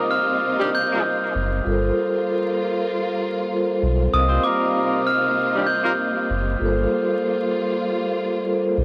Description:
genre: hip hop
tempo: 97 BPM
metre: 4/4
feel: swing 57% on 16ths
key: C minor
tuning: A4 = 440 Hz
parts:
  - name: glockenspiel with soft plastic mallets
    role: melody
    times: 0.0-6.0 s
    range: D6 to G6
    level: -26 LUFS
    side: equal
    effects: high-pass filter, low-pass filter
  - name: vibraphone with soft mallets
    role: accompaniment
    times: 0.0-8.8 s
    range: G3 to F5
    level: -25 LUFS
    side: equal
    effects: cassette tape, high-pass filter, low-pass filter
  - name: warm symphonic string section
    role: sustained chords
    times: 0.0-8.8 s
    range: C3 to F4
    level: -31 LUFS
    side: equal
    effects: high-pass filter, low-pass filter
  - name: warm horn section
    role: stabs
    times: 0.0-5.9 s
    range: Eb3 to C5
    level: -28 LUFS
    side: equal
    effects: high-pass filter, low-pass filter, analog delay
  - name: sub bass with octave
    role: bass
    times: 1.4-8.8 s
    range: F#1 to C2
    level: -24 LUFS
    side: equal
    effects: none
room: studio reverb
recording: dry, gritty hardware recording, transformer saturation, vinyl crackle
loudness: -22 LUFS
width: mono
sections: 0.0-8.8 A section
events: none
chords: 0.0 Cm11; 1.7 Gm11; 4.1 Cm11; 6.6 Gm11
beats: 0.42 1.04 | 1.66 2.28 2.90 3.51 | 4.13 4.75 5.37 5.99 | 6.61 7.22 7.84 8.46

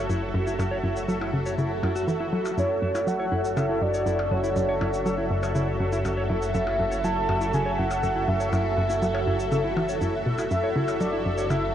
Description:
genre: ambient, sequencer-driven space music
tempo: 121 BPM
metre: 4/4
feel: straight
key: F# minor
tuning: A4 = 445 Hz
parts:
  - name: lush unison pad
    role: sustained chords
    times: 0.0-11.7 s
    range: F#4 to E5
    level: -29 LUFS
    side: equal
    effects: chorus, phaser
  - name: mellow electric guitar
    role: arpeggios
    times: 0.0-11.6 s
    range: E4 to C#5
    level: -33 LUFS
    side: left 1 dB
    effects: auto-pan, tape echo
  - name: fat analog bass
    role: bass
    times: 0.0-11.7 s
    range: F#1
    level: -33 LUFS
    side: equal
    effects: none
  - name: hollow square pluck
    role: riff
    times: 0.1-11.7 s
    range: F#2 to F#3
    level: -28 LUFS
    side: equal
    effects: chorus, tape echo
  - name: shaker and percussion blips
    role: percussion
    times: 0.1-11.6 s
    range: none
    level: -41 LUFS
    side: left 2 dB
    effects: tape echo
  - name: soft octave-layered synth lead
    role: melody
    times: 2.6-11.7 s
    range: C#5 to A5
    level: -28 LUFS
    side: equal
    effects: chorus, tape echo
room: wet huge ambient reverb, RT60 8.9 s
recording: worn, warbling old tape, cassette tape, warbly pitch drift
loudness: -23 LUFS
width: side -10 dB against mid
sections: 0.0-11.7 A section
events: fade-in on analog synth bass 0.0-11.7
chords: 0.0 F#m7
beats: 0.10 | 0.59 1.09 1.58 2.08 | 2.58 3.07 3.57 4.06 | 4.56 5.06 5.55 6.05 | 6.54 7.04 7.54 8.03 | 8.53 9.02 9.52 10.01 | 10.51 11.01 11.50

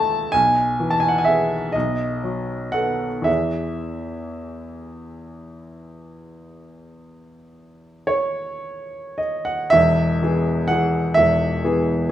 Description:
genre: classical, romantic nocturne for solo piano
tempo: 36-45 BPM (dotted quarters)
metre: 12/8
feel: rubato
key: E major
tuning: A4 = 439 Hz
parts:
  - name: clear grand piano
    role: solo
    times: 0.0-12.1 s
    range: E1 to A5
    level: -19 LUFS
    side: equal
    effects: none
room: moderate recital hall reverb, RT60 1.6 s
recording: studio reverb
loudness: -18 LUFS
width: side -12 dB against mid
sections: 0.0-9.7 A section; 9.7-12.1 A section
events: none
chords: 0.3 E/B; 1.7 B7; 3.3 E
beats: 0.34 1.74 | 3.27 4.87 6.47 8.09 | 9.71 11.16

